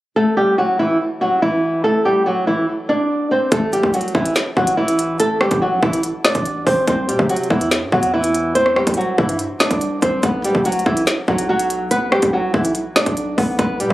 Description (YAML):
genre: hip hop, drill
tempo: 143 BPM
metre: 4/4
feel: half-time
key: unclear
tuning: A4 = 440 Hz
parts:
  - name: flamenco guitar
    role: melody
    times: 0.2-13.9 s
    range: E3 to D5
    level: -16 LUFS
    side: equal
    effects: low-pass filter, ping-pong delay
  - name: hard-hitting 808-style bass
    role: bass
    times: 3.5-13.9 s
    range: A1 to C3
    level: -25 LUFS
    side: equal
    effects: none
  - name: drill drum kit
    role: drums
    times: 3.5-13.9 s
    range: hi-hat, kick drum, rim click, snare drum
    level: -19 LUFS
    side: equal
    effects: none
room: light reverb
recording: recorded on a phone in the room, club ambience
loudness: -15 LUFS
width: side -16 dB against mid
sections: 0.2-3.5 A section; 3.5-13.9 B section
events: none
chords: 0.2 A5; 6.9 C; 10.2 Bm